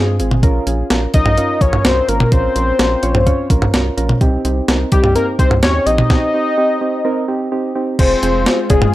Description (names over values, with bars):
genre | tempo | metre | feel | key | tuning
synth-pop | 127 BPM | 4/4 | straight | unclear | A4 = 439 Hz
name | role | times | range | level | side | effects
fat analog lead | melody | 0.0-8.9 s | G4 to Eb5 | -17 LUFS | left 2 dB | chorus, analog delay
soft electric-piano-like synth keys | accompaniment | 0.0-8.9 s | C4 to Db5 | -20 LUFS | right 2 dB | chorus
rubbery square bass | bass | 0.0-8.9 s | F1 to G2 | -19 LUFS | equal | none
clean 12-bit digital drum machine | drums | 0.2-8.9 s | cowbell, crash cymbal, hi-hat, kick drum, snare drum, toms | -15 LUFS | equal | none
soft string machine | sustained chords | 8.0-8.9 s | Ab3 to F4 | -23 LUFS | left 2 dB | ensemble chorus
room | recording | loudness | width
little or no reverb | dry, gritty hardware recording | -12 LUFS | side -15 dB against mid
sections
0.0-8.0 A section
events
stop 6.1-8.0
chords
0.4 Bbmadd9; 4.2 Cm; 8.0 Fm